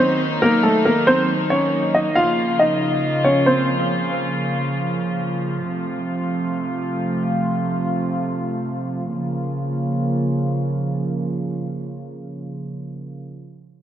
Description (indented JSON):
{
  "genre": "hip hop, drill",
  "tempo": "free time",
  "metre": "none",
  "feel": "none",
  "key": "Bb harmonic minor",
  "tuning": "A4 = 440 Hz",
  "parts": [
    { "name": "dark grand piano", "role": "melody", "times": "0.0-3.7 s", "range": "A3 to F5", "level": "-17 LUFS", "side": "equal", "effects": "low-pass filter, tape echo" },
    { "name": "warm studio string section", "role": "sustained chords", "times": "0.0-13.2 s", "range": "C3 to F4", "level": "-22 LUFS", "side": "right 1 dB", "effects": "low-pass filter" }
  ],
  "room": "moderate lush hall reverb, RT60 2.9 s",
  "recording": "none",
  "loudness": "-18 LUFS",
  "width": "side -10 dB against mid",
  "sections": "0.0-9.1 A section; 9.1-12.6 B section",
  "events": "filter sweep 0.0-9.1",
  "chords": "0.0 Ebm; 2.2 Bbm; 5.6 F; 9.1 Bbm"
}